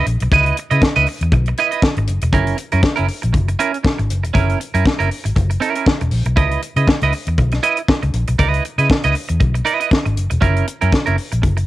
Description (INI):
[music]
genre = disco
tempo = 119 BPM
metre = 4/4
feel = swing 56% on 16ths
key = C# dorian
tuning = A4 = 440 Hz
[part]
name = clean electric guitar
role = accompaniment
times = 0.0-11.6 s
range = C#4 to D#5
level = -18 LUFS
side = right 6 dB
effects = cassette tape, plate reverb
[part]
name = vintage muted fingered electric bass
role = bass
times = 0.0-11.6 s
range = E1 to C#3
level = -17 LUFS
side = left 1 dB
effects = tube saturation
[part]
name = tight funk drum kit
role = drums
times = 0.1-11.7 s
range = hi-hat, kick drum, snare drum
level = -18 LUFS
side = left 1 dB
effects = cassette tape
[sound]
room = moderate booth ambience, RT60 0.2 s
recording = home recording on cassette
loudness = -14 LUFS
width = side -16 dB against mid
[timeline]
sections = 0.0-11.7 A section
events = none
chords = 0.0 C#m9; 2.3 F#7; 6.4 C#m9; 10.4 F#7